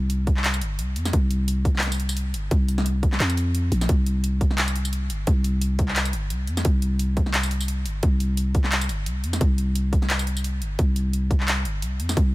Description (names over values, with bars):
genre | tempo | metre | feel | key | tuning
half-time drum and bass | 174 BPM | 4/4 | swing 55% on 16ths, half-time | unclear | A4 = 440 Hz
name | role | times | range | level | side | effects
growling 808-style bass | bass | 0.0-12.3 s | G1 to F2 | -23 LUFS | equal | none
drum and bass drum kit | drums | 0.1-12.2 s | handclaps, hi-hat, snare drum, tambourine | -28 LUFS | equal | overdrive
electronic kick drum | drums | 0.3-12.2 s | none | -21 LUFS | equal | none
room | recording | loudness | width
little or no reverb | none | -21 LUFS | side -19 dB against mid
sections
0.0-12.3 A section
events
kick drops out 3.5-3.9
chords
none